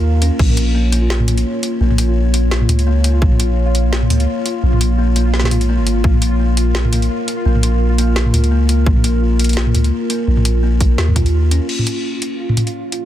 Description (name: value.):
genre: half-time drum and bass.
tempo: 170 BPM.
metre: 4/4.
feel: swing 56% on 16ths, half-time.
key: Bb minor.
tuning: A4 = 440 Hz.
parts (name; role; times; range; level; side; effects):
dark analog pad; sustained chords; 0.0-13.1 s; Bb3 to F5; -26 LUFS; right 2 dB; chorus, phaser, sidechain pumping.
buzzing kalimba; arpeggios; 0.0-11.7 s; Ab3 to F4; -22 LUFS; left 4 dB; dub echo.
long sustained 808-style bass; bass; 0.0-11.6 s; Ab1 to Eb2; -14 LUFS; equal; tube saturation.
pulsing gated texture; texture; 0.0-13.1 s; F4 to Bb4; -27 LUFS; right 1 dB; chorus, built-in reverb.
drum and bass drum kit; drums; 0.2-13.0 s; crash cymbal, hi-hat, snare drum, toms; -20 LUFS; equal; none.
electronic kick drum; drums; 0.4-0.5, 3.2-3.3, 6.0-6.1, 8.9-11.2 s; none; -14 LUFS; equal; none.
room: little or no reverb.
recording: dense, heavily limited modern master.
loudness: -13 LUFS.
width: side -12 dB against mid.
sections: 0.0-11.7 A section; 11.7-13.1 B section.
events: drop 0.0-11.7; break 0.0-0.4.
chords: 0.0 Bbm.